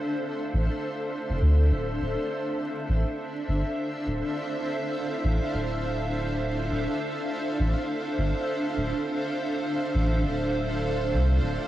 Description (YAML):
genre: ambient dub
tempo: 102 BPM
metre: 4/4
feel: swing 57% on 16ths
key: D minor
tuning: A4 = 440 Hz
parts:
  - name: granular cloud pad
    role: sustained chords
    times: 0.0-11.7 s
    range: D4 to F5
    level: -28 LUFS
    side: equal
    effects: built-in reverb
  - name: soft dub sub bass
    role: bass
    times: 0.5-11.6 s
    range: D1 to D2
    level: -25 LUFS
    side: equal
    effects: transformer saturation
room: light reverb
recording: home recording on cassette, vinyl crackle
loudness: -25 LUFS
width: side -14 dB against mid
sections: 0.0-2.0 A section; 2.0-11.7 B section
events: none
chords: 0.0 Dm7